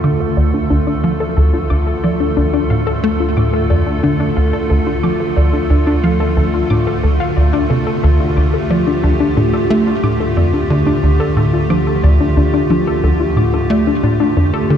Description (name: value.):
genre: ambient, sequencer-driven space music.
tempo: 90 BPM.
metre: 4/4.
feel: straight.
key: D minor.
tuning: A4 = 442 Hz.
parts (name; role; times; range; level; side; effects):
evolving wavetable pad; sustained chords; 0.0-14.8 s; D2 to A4; -17 LUFS; equal; chorus, built-in reverb, shimmer reverb.
warbly dusty pluck; arpeggios; 0.0-14.8 s; D4 to D6; -20 LUFS; moving between left 8 dB and right 1 dB; chorus, auto-pan, tape echo, shimmer reverb.
tight sequencer bass; riff; 0.0-14.8 s; D2 to A3; -15 LUFS; equal; analog chorus, tape echo.
room: wet cathedral reverb, RT60 4.8 s.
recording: in a vast, echoing space, nothing above 10.7 kHz.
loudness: -12 LUFS.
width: side -9 dB against mid.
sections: 0.0-14.8 A section.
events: none.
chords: 0.0 Dm.